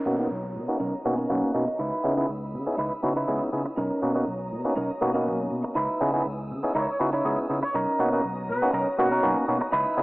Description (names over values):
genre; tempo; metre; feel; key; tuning
house; 121 BPM; 4/4; straight; unclear; A4 = 444 Hz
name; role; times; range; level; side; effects
warm chamber violin section; sustained chords; 0.0-10.0 s; C#5 to E6; -36 LUFS; equal; low-pass filter
clean electric guitar; riff; 0.0-10.0 s; C#4 to G#5; -28 LUFS; right 1 dB; low-pass filter
downlifter; sound effects; 0.0-1.8 s; none; -46 LUFS; equal; none
clav; accompaniment; 0.1-10.0 s; A#3 to G#4; -27 LUFS; equal; phaser, vintage 12-bit sampler grit, low-pass filter
fingered electric bass; bass; 0.1-10.0 s; B1 to C#3; -33 LUFS; equal; low-pass filter
clear trumpet section; melody; 6.8-9.4 s; F#4 to C#5; -31 LUFS; equal; low-pass filter, digital delay
room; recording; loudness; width
moderate plate reverb, RT60 1.9 s, digital ambience; AM radio sound; -23 LUFS; side -21 dB against mid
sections
0.0-10.0 A section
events
filter sweep 0.0-10.0; clean electric guitar fill 0.8-1.8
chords
0.0 Bmaj9; 1.8 C#m9; 3.8 Bmaj9; 5.8 C#m9; 7.7 Bmaj9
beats
0.31 0.80 1.30 | 1.79 2.29 2.79 3.28 | 3.78 4.27 4.77 5.26 | 5.76 6.26 6.75 7.25 | 7.74 8.24 8.74 9.23 | 9.73